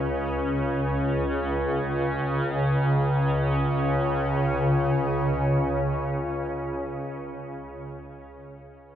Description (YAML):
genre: world meditative, free-time meditation music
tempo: free time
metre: none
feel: none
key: unclear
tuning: A4 = 441 Hz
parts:
  - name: shimmering ambient pad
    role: solo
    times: 0.0-7.2 s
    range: C#2 to C#3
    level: -24 LUFS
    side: equal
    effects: chorus, built-in reverb, analog delay
room: wet plate reverb, RT60 2.5 s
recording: dreamy mix soaked in reverb, cassette tape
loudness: -23 LUFS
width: side -10 dB against mid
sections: 0.0-2.8 A section; 2.8-7.3 B section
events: none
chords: none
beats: free time